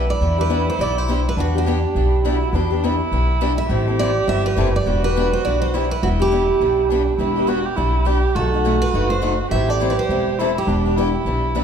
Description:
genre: acoustic string swing (jazz manouche).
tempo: 206 BPM.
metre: 4/4.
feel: swing 59% on 8ths.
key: E minor.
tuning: A4 = 436 Hz.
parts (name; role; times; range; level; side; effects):
picked steel-string acoustic guitar; melody; 0.0-11.1 s; F#4 to E5; -22 LUFS; right 4 dB; none.
dark violin; second line; 0.0-11.6 s; D4 to G4; -24 LUFS; right 4 dB; none.
picked steel-string acoustic guitar; accompaniment; 0.0-11.6 s; B2 to A4; -23 LUFS; left 5 dB; none.
upright bass; bass; 0.0-11.6 s; E1 to E2; -21 LUFS; equal; none.
room: moderate recital hall reverb, RT60 1.6 s.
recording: recorded in a church or concert hall.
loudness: -16 LUFS.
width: side -7 dB against mid.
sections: 0.0-11.6 A section.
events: none.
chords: 0.0 Em7; 3.7 Am9; 4.9 Em9; 8.4 B7b9; 9.5 Am7; 10.7 Em7.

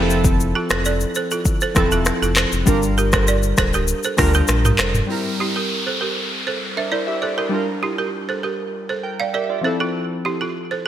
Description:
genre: afrobeats.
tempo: 99 BPM.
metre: 4/4.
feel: straight.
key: G dorian.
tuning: A4 = 437 Hz.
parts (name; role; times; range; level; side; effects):
warm analog keys; accompaniment; 0.0-10.9 s; F3 to G5; -23 LUFS; equal; chorus.
balafon; riff; 0.0-10.9 s; E4 to F5; -24 LUFS; right 5 dB; digital delay.
sub bass with octave; bass; 0.0-5.0 s; D1 to D2; -21 LUFS; equal; none.
afro-pop drum kit; drums; 0.1-5.1 s; finger snaps, handclaps, hi-hat, kick drum, rim click, shaker, toms; -19 LUFS; equal; gated reverb.
downlifter; sound effects; 5.1-9.9 s; none; -28 LUFS; equal; none.
room: moderate lush hall reverb, RT60 1.9 s, digital ambience.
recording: bright 1980s-style digital production.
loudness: -17 LUFS.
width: side -11 dB against mid.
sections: 0.0-5.1 A section; 5.1-10.9 B section.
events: none.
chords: 0.0 Fmaj7; 2.7 Gm7; 5.1 C7; 7.5 Gm7; 9.6 Fmaj7.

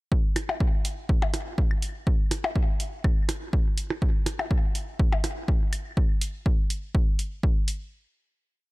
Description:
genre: techno.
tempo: 123 BPM.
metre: 4/4.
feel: swing 53% on 16ths.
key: none.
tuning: none.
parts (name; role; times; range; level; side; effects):
electronic kick drum; drums; 0.1-7.5 s; none; -23 LUFS; equal; none.
electronic hi-hat; drums; 0.4-7.8 s; none; -34 LUFS; right 1 dB; none.
percussion blips and claves; percussion; 0.4-5.8 s; none; -33 LUFS; equal; tape echo.
room: little or no reverb.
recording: dark, warm production.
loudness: -23 LUFS.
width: side -22 dB against mid.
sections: 0.1-7.9 groove.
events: none.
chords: none.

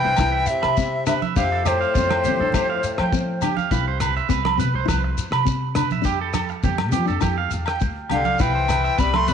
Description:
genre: highlife guitar band.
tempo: 102 BPM.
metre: 4/4.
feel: straight.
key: C major.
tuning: A4 = 441 Hz.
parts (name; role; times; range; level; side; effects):
bright reedy wooden flute; melody; 0.0-3.4, 8.1-9.3 s; C5 to C6; -22 LUFS; left 2 dB; slapback echo.
raspy tenor saxophone; second line; 0.0-3.4, 8.1-9.3 s; A2 to A3; -29 LUFS; left 11 dB; none.
nylon-string guitar; accompaniment; 0.0-9.3 s; C4 to E4; -28 LUFS; left 12 dB; none.
electric guitar at the edge of break-up; arpeggios; 0.0-9.3 s; F4 to B5; -25 LUFS; right 13 dB; spring reverb, slapback echo.
upright bass; bass; 0.0-9.3 s; C2 to F3; -26 LUFS; equal; none.
cloth-damped thuddy drum kit; drums; 0.2-9.3 s; hi-hat, kick drum, rim click; -26 LUFS; left 1 dB; none.
agogo bells; percussion; 0.2-9.3 s; none; -32 LUFS; left 17 dB; none.
congas; percussion; 0.2-9.3 s; none; -30 LUFS; right 10 dB; none.
shekere; percussion; 0.2-9.3 s; none; -32 LUFS; left 6 dB; none.
room: light reverb, small room ambience.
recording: 1960s-style stereo with parts hard left and right, nothing above 10.5 kHz.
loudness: -19 LUFS.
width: side -7 dB against mid.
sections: 0.0-9.3 A section.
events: none.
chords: 0.0 Cmaj7; 1.4 Fadd9; 3.7 Cmaj7; 6.1 Fadd9; 8.4 Cmaj7.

